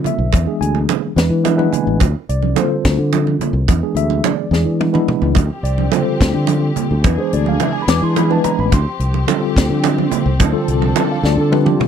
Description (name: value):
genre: electric jazz fusion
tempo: 72 BPM (dotted quarters)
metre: 6/8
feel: straight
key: D dorian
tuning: A4 = 440 Hz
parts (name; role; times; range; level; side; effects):
- mellow tine electric piano; accompaniment; 0.0-11.9 s; D3 to D6; -19 LUFS; left 2 dB; medium stereo tremolo
- fingered electric bass; bass; 0.0-11.8 s; A1 to E3; -17 LUFS; left 1 dB; none
- congas; percussion; 0.0-11.9 s; none; -20 LUFS; right 16 dB; none
- tight funk drum kit; drums; 0.1-11.9 s; hi-hat, kick drum, snare drum, toms; -18 LUFS; left 1 dB; none
- dark studio string section; sustained chords; 5.4-11.9 s; E3 to A4; -26 LUFS; left 3 dB; none
room: little or no reverb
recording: dry, close 1970s-style studio recording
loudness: -14 LUFS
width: side -8 dB against mid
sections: 0.0-11.9 A section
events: tine electric piano fill 1.2-2.0; drum fill 4.5-5.4, 11.2-11.9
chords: 0.3 E7; 2.0 Dm7; 3.7 E7; 5.4 Dm7; 7.0 E7; 8.7 Dm7